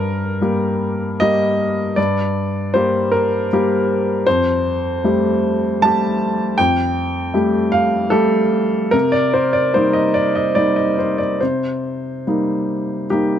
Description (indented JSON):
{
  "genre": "neoclassical minimalist piano",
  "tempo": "68-80 BPM",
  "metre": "3/4",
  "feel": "rubato",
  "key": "C dorian",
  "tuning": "A4 = 440 Hz",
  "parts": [
    { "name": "clear upright piano", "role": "solo", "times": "0.0-13.4 s", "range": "F2 to A5", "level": "-15 LUFS", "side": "equal", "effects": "none" }
  ],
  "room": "light reverb",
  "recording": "dark, warm production",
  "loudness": "-15 LUFS",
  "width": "side -9 dB against mid",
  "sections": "0.0-13.4 A section",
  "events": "none",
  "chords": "0.0 Gm; 4.3 Fadd9; 8.9 Cm7"
}